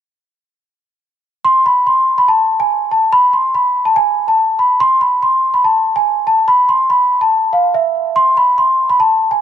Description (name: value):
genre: hip hop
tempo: 143 BPM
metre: 4/4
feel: half-time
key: A harmonic minor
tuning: A4 = 442 Hz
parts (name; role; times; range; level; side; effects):
- large celesta; melody; 1.4-9.4 s; E5 to C6; -10 LUFS; equal; ping-pong delay
room: light reverb, small room ambience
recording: dark, warm production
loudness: -11 LUFS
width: side -10 dB against mid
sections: 1.4-9.4 A section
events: none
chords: none